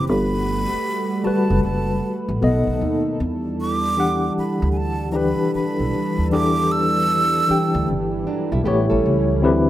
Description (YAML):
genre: R&B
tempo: 77 BPM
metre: 4/4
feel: swing 63% on 16ths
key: E minor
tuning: A4 = 441 Hz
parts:
  - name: breathy jazz flute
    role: melody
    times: 0.0-7.9 s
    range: F#5 to E6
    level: -24 LUFS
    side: right 2 dB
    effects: plate reverb
  - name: tine electric piano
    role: accompaniment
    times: 0.0-9.7 s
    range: B2 to G5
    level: -21 LUFS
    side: left 3 dB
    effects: fast tremolo
  - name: lush unison pad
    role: sustained chords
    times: 0.0-9.7 s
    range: D#3 to B4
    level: -25 LUFS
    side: right 1 dB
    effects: chorus
  - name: upright bass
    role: bass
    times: 0.0-9.7 s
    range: F#1 to E2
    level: -23 LUFS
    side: equal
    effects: none
  - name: nylon-string guitar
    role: second line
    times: 8.3-9.4 s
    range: F#3 to A4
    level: -25 LUFS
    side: right 7 dB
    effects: none
room: light reverb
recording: rough home demo mix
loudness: -18 LUFS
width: side -13 dB against mid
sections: 0.0-9.7 A section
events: none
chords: 0.1 Gmaj9; 2.4 B7; 3.2 Em9; 8.6 A7